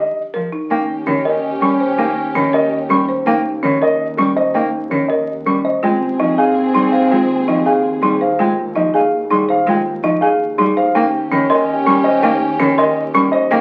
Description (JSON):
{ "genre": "classical, minimalist pattern music", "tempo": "328 BPM (eighths)", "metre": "7/8", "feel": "straight", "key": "Eb mixolydian", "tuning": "A4 = 440 Hz", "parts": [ { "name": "dark baby grand piano", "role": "melody", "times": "0.0-13.6 s", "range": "Ab4 to G5", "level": "-21 LUFS", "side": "equal", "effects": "none" }, { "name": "folk marimba with hard mallets", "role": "arpeggios", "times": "0.0-13.6 s", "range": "Db4 to C5", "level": "-21 LUFS", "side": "equal", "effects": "none" }, { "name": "warm cello", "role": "accompaniment", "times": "0.3-13.6 s", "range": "Eb3 to Bb3", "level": "-24 LUFS", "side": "equal", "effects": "none" }, { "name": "warm clarinet", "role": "second line", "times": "0.7-3.0, 5.8-8.2, 10.9-13.3 s", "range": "C4 to Db4", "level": "-23 LUFS", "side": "equal", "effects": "none" }, { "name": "warm studio violin section", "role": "sustained chords", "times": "0.7-3.0, 5.8-8.2, 10.9-13.3 s", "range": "C4 to Ab4", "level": "-27 LUFS", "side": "equal", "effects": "none" }, { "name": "warm studio double bass section", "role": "bass", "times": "0.7-13.6 s", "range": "Eb2", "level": "-33 LUFS", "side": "equal", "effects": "none" }, { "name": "hollow concert flute", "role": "arpeggios", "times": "1.6-13.2 s", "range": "Ab5 to Db6", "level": "-22 LUFS", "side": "equal", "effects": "none" } ], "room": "wet large studio reverb, RT60 0.9 s", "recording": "very old 78 rpm record, vinyl crackle", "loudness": "-16 LUFS", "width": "mono", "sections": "0.7-13.6 A section", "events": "none", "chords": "0.0 Ebsus2; 0.7 Eb7; 5.8 Ab/Eb; 10.9 Eb7", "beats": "0.16 0.34 0.52 | 0.70 0.89 1.07 1.25 1.44 1.62 1.80 | 1.99 2.17 2.35 2.53 2.72 2.90 3.08 | 3.27 3.45 3.63 3.81 4.00 4.18 4.36 | 4.55 4.73 4.91 5.09 5.28 5.46 5.64 | 5.83 6.01 6.19 6.38 6.56 6.74 6.92 | 7.11 7.29 7.47 7.66 7.84 8.02 8.21 | 8.39 8.57 8.75 8.94 9.12 9.30 9.49 | 9.67 9.85 10.03 10.22 10.40 10.58 10.77 | 10.95 11.13 11.31 11.50 11.68 11.86 12.05 | 12.23 12.41 12.60 12.78 12.96 13.14 13.33 | 13.51" }